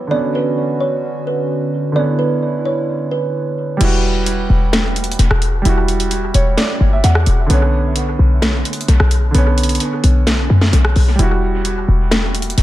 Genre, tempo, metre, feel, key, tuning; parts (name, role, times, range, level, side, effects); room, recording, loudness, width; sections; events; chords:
hip hop, trap; 130 BPM; 4/4; half-time; A4 = 440 Hz
kalimba; melody; 0.0-3.8 s; B4 to D5; -21 LUFS; right 4 dB; low-pass filter, dub echo
warm concert grand piano; accompaniment; 0.0-12.6 s; D3 to F#5; -20 LUFS; right 3 dB; low-pass filter, dub echo
hollow soft pad; sustained chords; 0.0-3.8 s; D3 to F#4; -22 LUFS; left 2 dB; chorus
short 808-style bass; bass; 3.8-12.6 s; E1 to F#2; -14 LUFS; left 1 dB
techno drum kit; drums; 3.8-12.6 s; crash cymbal, hi-hat, rim click, snare drum; -20 LUFS; equal; dub echo
little or no reverb; echo-heavy mix; -13 LUFS; side -15 dB against mid
0.0-3.8 A section; 3.8-12.6 B section
0.1 Bmadd9; 3.8 Emadd9; 7.5 Bmadd9; 11.2 Emadd9